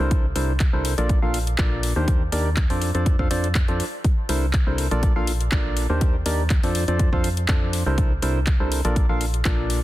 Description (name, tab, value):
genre	piano house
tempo	122 BPM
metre	4/4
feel	swing 53% on 16ths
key	unclear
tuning	A4 = 440 Hz
part	percussive organ stab	riff	0.0-9.8 s	Bb2 to F5	-26 LUFS	equal	chorus, sidechain pumping, tape echo
part	organ-like FM bass	bass	0.0-9.8 s	Bb1 to F2	-24 LUFS	equal	sidechain pumping
part	electronic kick drum	drums	0.1-9.6 s	none	-21 LUFS	equal	none
part	house drum kit	drums	0.1-9.8 s	handclaps, hi-hat	-30 LUFS	left 2 dB	none
room	little or no reverb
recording	dense, heavily limited modern master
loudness	-19 LUFS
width	side -16 dB against mid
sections	0.0-9.8 A section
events	none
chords	0.1 C13; 1.1 Bbmaj7; 2.1 Ebmaj7; 2.8 F6; 4.0 C13; 5.0 Bbmaj7; 6.0 Ebmaj7; 6.8 F6; 8.0 C13; 9.0 Bbmaj7